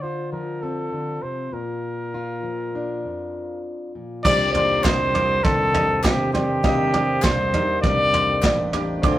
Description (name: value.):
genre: indie folk with a building arrangement.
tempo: 100 BPM.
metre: 4/4.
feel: straight.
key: unclear.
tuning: A4 = 443 Hz.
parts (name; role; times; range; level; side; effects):
warm trumpet; melody; 0.0-9.2 s; G4 to D5; -23 LUFS; equal; none.
fingerpicked plugged-in steel-string acoustic guitar; accompaniment; 0.0-6.3 s; F2 to F4; -30 LUFS; left 2 dB; none.
warm cello; second line; 4.2-9.2 s; Eb3 to Bb3; -33 LUFS; left 1 dB; none.
felt-muted upright piano; accompaniment; 4.2-9.2 s; C2 to F5; -28 LUFS; right 1 dB; none.
picked steel-string acoustic guitar; accompaniment; 4.2-9.2 s; C3 to A4; -32 LUFS; left 4 dB; none.
pedal harmonium; sustained chords; 4.2-9.2 s; C3 to F4; -33 LUFS; equal; none.
vintage brush drum kit; drums; 4.2-9.2 s; crash cymbal, kick drum, snare drum, toms; -23 LUFS; right 1 dB; none.
clear upright piano; arpeggios; 4.3-9.2 s; Eb4 to D6; -29 LUFS; right 3 dB; none.
fingered electric bass; bass; 4.3-9.2 s; A1 to C3; -27 LUFS; equal; none.
group handclap; percussion; 4.8-8.6 s; none; -33 LUFS; left 2 dB; none.
room: wet studio reverb, RT60 0.6 s.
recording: rough rehearsal-room recording.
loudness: -19 LUFS.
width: side -13 dB against mid.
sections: 0.0-4.2 A section; 4.2-9.2 B section.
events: none.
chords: 0.0 Dm7; 1.5 Bb; 4.2 Cmadd9.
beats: 0.03 0.63 1.23 | 1.83 2.44 3.04 3.64 | 4.24 4.84 5.44 6.04 | 6.64 7.24 7.83 8.43 | 9.03.